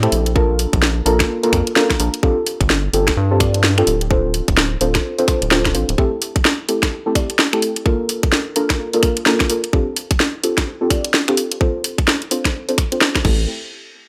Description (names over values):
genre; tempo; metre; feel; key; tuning
UK garage, two-step garage; 128 BPM; 4/4; swing 60% on 16ths; unclear; A4 = 440 Hz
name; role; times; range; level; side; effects
deep mellow chord stab; stabs; 0.0-13.4 s; A3 to D5; -22 LUFS; equal; chorus, tape echo
rubbery square bass; bass; 0.0-6.0, 13.2-13.5 s; D1 to G2; -21 LUFS; equal; tube saturation
garage drum kit; drums; 0.0-13.4 s; crash cymbal, finger snaps, hi-hat, snare drum; -20 LUFS; equal; overdrive, studio reverb
electronic kick drum; drums; 0.4-13.4 s; none; -21 LUFS; equal; overdrive, studio reverb
room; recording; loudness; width
little or no reverb; dry, gritty hardware recording; -17 LUFS; mono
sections
0.0-13.5 A section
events
filter sweep on synth stab 0.0-13.5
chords
0.4 Bbmaj7; 2.2 G9sus4; 4.1 Dm7; 6.0 Am7; 7.9 Bbmaj7; 9.7 G9sus4; 11.6 Dm7; 13.2 Am7; 13.5 N.C.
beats
| 0.36 0.82 1.29 1.76 | 2.23 2.70 3.17 3.64 | 4.11 4.58 5.04 5.51 | 5.98 6.45 6.92 7.39 | 7.86 8.32 8.79 9.26 | 9.73 10.20 10.67 11.14 | 11.61 12.07 12.54 13.01